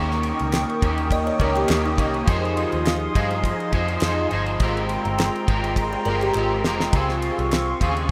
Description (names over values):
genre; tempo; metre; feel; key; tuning
indie pop, bedroom pop; 103 BPM; 4/4; swing 55% on 16ths; Ab major; A4 = 439 Hz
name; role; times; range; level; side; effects
electric guitar at the edge of break-up; accompaniment; 0.0-8.1 s; Db3 to C5; -27 LUFS; equal; ensemble chorus, vibrato effect
hollow soft pad; sustained chords; 0.0-8.1 s; F4 to Eb6; -30 LUFS; equal; chorus
vintage muted picked electric bass; bass; 0.0-8.1 s; F1 to G2; -29 LUFS; equal; none
damped 70s drum kit; drums; 0.1-8.1 s; kick drum, ride cymbal, snare drum; -26 LUFS; equal; none
group handclap; percussion; 0.5-7.7 s; none; -38 LUFS; equal; none
buzzing kalimba; second line; 1.1-2.3, 5.9-6.9 s; Eb4 to Eb5; -31 LUFS; equal; analog chorus, tape echo
room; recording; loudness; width
light reverb, studio reverb; rough home demo mix; -22 LUFS; mono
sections
0.0-8.1 A section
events
drum fill 6.4-6.9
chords
0.0 Eb7; 2.3 Fm7; 4.6 Abmaj9; 6.9 Dbmaj7